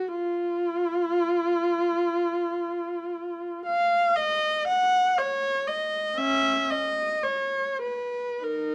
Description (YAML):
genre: classical, free, expressive piece for unaccompanied viola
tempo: 46-62 BPM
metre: 4/4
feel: rubato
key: unclear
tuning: A4 = 436 Hz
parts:
  - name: warm viola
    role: solo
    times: 0.0-8.7 s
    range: C#4 to F#5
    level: -26 LUFS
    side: equal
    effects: none
room: light reverb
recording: dark, warm production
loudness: -26 LUFS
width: mono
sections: 0.0-8.7 A section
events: none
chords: none